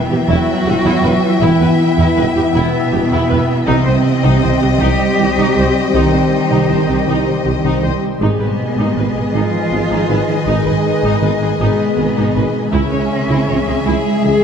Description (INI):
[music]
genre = cinematic, hybrid orchestral and electronic film score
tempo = 53 BPM (dotted quarters)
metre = 6/8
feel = straight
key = unclear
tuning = A4 = 440 Hz
[part]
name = warm cello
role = melody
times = 0.0-14.4 s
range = B3 to G#4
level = -22 LUFS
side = right 2 dB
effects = tape echo
[part]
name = warm symphonic violin section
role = melody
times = 0.0-14.4 s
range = G5 to G#5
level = -27 LUFS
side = left 6 dB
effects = none
[part]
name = rich studio violin section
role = second line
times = 0.0-14.4 s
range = Eb5 to E5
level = -24 LUFS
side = left 5 dB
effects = none
[part]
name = mellow French horn section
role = sustained chords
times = 0.0-14.4 s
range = G#3 to G#4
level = -22 LUFS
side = left 5 dB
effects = none
[part]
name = shimmering ambient pad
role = sustained chords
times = 0.1-14.4 s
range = C#3 to E5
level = -21 LUFS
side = equal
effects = chorus, built-in reverb
[part]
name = thumb-piano-like synth pluck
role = arpeggios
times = 0.0-14.4 s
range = C3 to G#4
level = -24 LUFS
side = equal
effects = none
[part]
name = dark symphonic cello section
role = bass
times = 0.0-14.4 s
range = B2 to G#3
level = -20 LUFS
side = right 2 dB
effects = none
[part]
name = warm studio viola section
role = accompaniment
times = 0.1-14.4 s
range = Eb4 to C#5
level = -23 LUFS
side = right 1 dB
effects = none
[part]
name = warm symphonic double bass section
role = bass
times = 0.1-14.3 s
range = G#1 to E2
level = -21 LUFS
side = right 2 dB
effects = none
[part]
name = mellow tuba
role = bass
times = 0.3-14.3 s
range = E1 to C#2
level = -22 LUFS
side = right 3 dB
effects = none
[part]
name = felt-muted upright piano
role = texture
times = 0.3-14.4 s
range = C4 to E5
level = -29 LUFS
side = left 4 dB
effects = none
[sound]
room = wet scoring stage reverb, RT60 1.8 s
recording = dark, warm production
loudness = -12 LUFS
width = side -7 dB against mid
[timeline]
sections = 0.0-14.4 A section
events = none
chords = 0.0 Em; 3.7 Cm; 8.2 G#m; 12.7 C#m